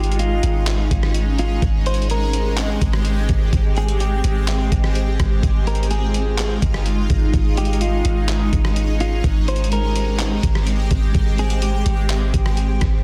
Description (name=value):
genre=hip hop, atmospheric cloud-rap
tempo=126 BPM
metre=4/4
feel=half-time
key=Ab major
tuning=A4 = 440 Hz
part: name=clean electric guitar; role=melody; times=0.0-12.1 s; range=F4 to C5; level=-30 LUFS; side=equal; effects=spring reverb, tape echo
part: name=shimmering ambient pad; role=sustained chords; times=0.0-13.0 s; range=Ab3 to G4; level=-27 LUFS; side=equal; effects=chorus, built-in reverb, phaser, sidechain pumping
part: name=soft 808-style bass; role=bass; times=0.0-13.0 s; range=G1 to Ab1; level=-21 LUFS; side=equal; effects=none
part: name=trip hop sampler-style drum kit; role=drums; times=0.0-12.9 s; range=handclaps, hi-hat, kick drum, rim click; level=-25 LUFS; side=equal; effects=none
room=little or no reverb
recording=dense, heavily limited modern master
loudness=-19 LUFS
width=mono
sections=0.0-13.0 A section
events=none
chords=0.0 Eb9sus4/Ab; 1.6 Abmaj7; 5.4 Fm9/Ab; 7.3 Eb9sus4/Ab; 9.2 Abmaj7